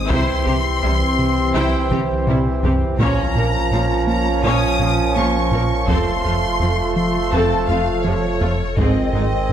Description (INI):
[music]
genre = cinematic, hybrid orchestral and electronic film score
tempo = 83 BPM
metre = 4/4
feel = straight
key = Bb minor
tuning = A4 = 441 Hz
[part]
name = rich symphonic violin section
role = melody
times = 0.0-9.5 s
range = Db5 to Eb6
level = -24 LUFS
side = left 4 dB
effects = none
[part]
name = airy breathy pad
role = sustained chords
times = 0.0-9.5 s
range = Eb3 to Db5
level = -25 LUFS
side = equal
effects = chorus
[part]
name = pure sine sub bass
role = bass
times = 0.0-9.5 s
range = F1 to C2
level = -24 LUFS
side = left 1 dB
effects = none
[part]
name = rich symphonic viola section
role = accompaniment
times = 0.1-9.5 s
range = C3 to Db5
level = -24 LUFS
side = equal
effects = none
[part]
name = clear trombone section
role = sustained chords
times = 0.1-9.5 s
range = Eb3 to Db4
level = -22 LUFS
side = right 4 dB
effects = none
[part]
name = rubbery square bass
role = riff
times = 0.1-9.5 s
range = C2 to Bb3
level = -23 LUFS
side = right 1 dB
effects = none
[part]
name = rich studio cello section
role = bass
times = 0.1-9.5 s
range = F2 to C3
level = -26 LUFS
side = right 1 dB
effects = none
[part]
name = taiko ensemble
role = drums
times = 0.1-9.5 s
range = none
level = -25 LUFS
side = left 1 dB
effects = none
[sound]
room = moderate scoring stage reverb, RT60 1.6 s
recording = none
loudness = -16 LUFS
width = side -9 dB against mid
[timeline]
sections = 0.0-9.5 A section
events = drum fill 1.9-3.0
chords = 0.1 C; 3.0 Bbm; 5.9 F; 8.8 Ab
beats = | 0.10 0.83 1.55 2.27 | 3.00 3.72 4.44 5.17 | 5.89 6.61 7.33 8.06 | 8.78 9.50